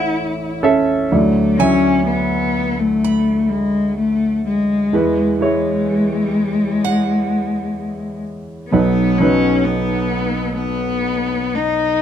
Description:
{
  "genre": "acoustic folk-pop ballad",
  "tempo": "63 BPM",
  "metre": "4/4",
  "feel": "straight",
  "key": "unclear",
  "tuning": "A4 = 438 Hz",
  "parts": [
    { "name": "warm baby grand piano", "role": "melody", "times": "0.0-12.0 s", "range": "A1 to E5", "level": "-18 LUFS", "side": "right 2 dB", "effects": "none" },
    { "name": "dark cello", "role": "second line", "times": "0.0-12.0 s", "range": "G#3 to E4", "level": "-18 LUFS", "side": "left 3 dB", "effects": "none" },
    { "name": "picked acoustic archtop guitar", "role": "arpeggios", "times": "0.0-8.6 s", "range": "F#5 to B5", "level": "-26 LUFS", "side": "right 8 dB", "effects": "none" }
  ],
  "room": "moderate studio reverb, RT60 0.6 s",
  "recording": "dark, warm production",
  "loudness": "-15 LUFS",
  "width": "side -9 dB against mid",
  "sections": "0.0-1.1 A section; 1.1-12.0 B section",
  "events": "cello solo 1.1-12.0",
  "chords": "0.0 A; 1.1 Dadd9; 4.9 E; 8.7 B"
}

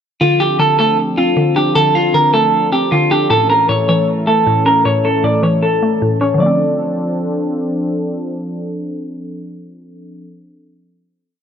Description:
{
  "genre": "hip hop, trap",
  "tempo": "155 BPM",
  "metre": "4/4",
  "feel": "half-time",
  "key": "D minor",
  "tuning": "A4 = 442 Hz",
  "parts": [
    { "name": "semi-hollow electric guitar", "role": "melody", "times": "0.2-7.5 s", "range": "F4 to D5", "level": "-14 LUFS", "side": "equal", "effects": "analog delay" },
    { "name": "mallet-like synth pluck", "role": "accompaniment", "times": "0.2-10.9 s", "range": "A2 to D4", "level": "-17 LUFS", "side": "left 1 dB", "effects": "chorus" },
    { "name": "warm analog pad", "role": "sustained chords", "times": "0.2-10.3 s", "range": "E3 to A4", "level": "-21 LUFS", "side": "equal", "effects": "chorus" }
  ],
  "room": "moderate recital hall reverb, RT60 1.5 s, digital ambience",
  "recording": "dry, gritty hardware recording, low-pass filter",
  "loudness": "-12 LUFS",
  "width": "side -8 dB against mid",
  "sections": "0.2-6.4 breakdown; 6.4-9.5 final chord",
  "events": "filter sweep 0.2-6.4",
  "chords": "0.2 Dm7; 3.3 A; 6.4 Dm7"
}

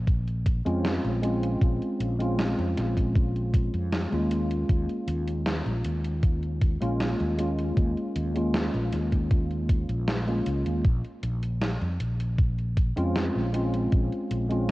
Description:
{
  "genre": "vaporwave",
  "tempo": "78 BPM",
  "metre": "4/4",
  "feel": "straight",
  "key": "Bb minor",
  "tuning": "A4 = 440 Hz",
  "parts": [
    { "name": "mellow fretless electric bass", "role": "bass", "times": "0.0-14.7 s", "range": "Bb1 to F2", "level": "-28 LUFS", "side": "equal", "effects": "none" },
    { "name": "electronic kick drum", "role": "drums", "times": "0.1-14.1 s", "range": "none", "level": "-23 LUFS", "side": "equal", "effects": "studio reverb" },
    { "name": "gated 80s digital drum machine", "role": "drums", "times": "0.1-14.7 s", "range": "hi-hat, snare drum", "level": "-32 LUFS", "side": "equal", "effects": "gated reverb, gated reverb snare, studio reverb" },
    { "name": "mellow tine electric piano", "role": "accompaniment", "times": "0.7-14.7 s", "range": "Ab3 to F4", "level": "-28 LUFS", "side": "equal", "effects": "analog chorus, analog delay" }
  ],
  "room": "light reverb",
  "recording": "worn, warbling old tape, cassette tape, warbly pitch drift",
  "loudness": "-24 LUFS",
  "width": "side -19 dB against mid",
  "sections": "0.0-14.7 A section",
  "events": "none",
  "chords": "0.0 Bbm9; 4.3 Eb7sus4; 10.8 Bbm9"
}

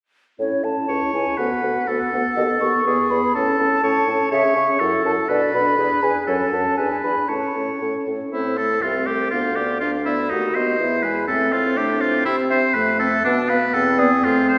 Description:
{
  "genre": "quick classical-period movement for wind quintet",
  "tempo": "122 BPM",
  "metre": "2/4",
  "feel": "straight",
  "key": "A major, A minor from 8.3 s",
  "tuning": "A4 = 439 Hz",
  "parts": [
    { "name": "mellow concert flute", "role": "melody", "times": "0.4-14.6 s", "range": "A4 to C#6", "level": "-26 LUFS", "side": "equal", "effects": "none" },
    { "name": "dark French horn", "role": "accompaniment", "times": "0.4-14.6 s", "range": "G#3 to E4", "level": "-30 LUFS", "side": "equal", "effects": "none" },
    { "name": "warm clarinet", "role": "accompaniment", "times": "0.4-14.6 s", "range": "A3 to A4", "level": "-28 LUFS", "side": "equal", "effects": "none" },
    { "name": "dark bassoon", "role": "bass", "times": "0.4-14.6 s", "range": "C2 to C#3", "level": "-28 LUFS", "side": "equal", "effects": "none" },
    { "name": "clear oboe", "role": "second line", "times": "0.9-14.6 s", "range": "D4 to C#5", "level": "-24 LUFS", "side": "equal", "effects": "none" }
  ],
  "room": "wet scoring stage reverb, RT60 1.7 s",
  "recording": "recorded in a church or concert hall",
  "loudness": "-20 LUFS",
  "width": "mono",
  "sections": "0.4-8.3 A section; 8.3-14.6 B section",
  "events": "none",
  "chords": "0.4 A; 0.9 A/C#; 1.4 Bm/D; 2.4 B7/D#; 2.9 E; 3.3 A; 4.3 C#m; 4.8 F#m7; 5.3 Bm7; 5.8 E7; 6.3 F#m; 6.8 E7; 7.3 A; 8.3 Am; 8.8 Am/C; 9.3 Bdim/D; 10.3 B7/D#; 10.8 E; 11.3 Am; 12.3 C; 12.7 Fmaj7; 13.2 Bdim; 13.7 E7"
}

